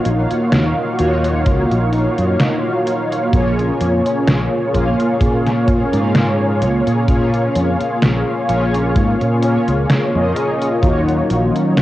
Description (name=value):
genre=vaporwave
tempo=64 BPM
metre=4/4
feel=swing 54% on 16ths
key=unclear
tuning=A4 = 441 Hz
part: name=mellow synth brass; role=accompaniment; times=0.0-11.8 s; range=Bb3 to F5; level=-16 LUFS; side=equal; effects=ensemble chorus, analog delay
part: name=fingered electric bass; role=bass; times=0.1-11.8 s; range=Bb1 to Bb2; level=-18 LUFS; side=equal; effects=tube saturation
part: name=detuned 8-bit digital drum machine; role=drums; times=0.1-11.8 s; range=hi-hat, snare drum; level=-19 LUFS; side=equal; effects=overdrive, vintage 12-bit sampler grit
part: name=kick drum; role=drums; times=1.5-11.0 s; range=none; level=-17 LUFS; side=equal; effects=vintage 12-bit sampler grit
part: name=warbly tape-like pad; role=sustained chords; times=11.1-11.8 s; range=Eb3 to F5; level=-19 LUFS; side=equal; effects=chorus, built-in reverb
room=light reverb, small room ambience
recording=home recording on cassette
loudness=-14 LUFS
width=side -15 dB against mid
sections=0.0-11.8 A section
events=none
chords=0.0 Ebm9; 3.3 Bbm7; 10.8 Ebm9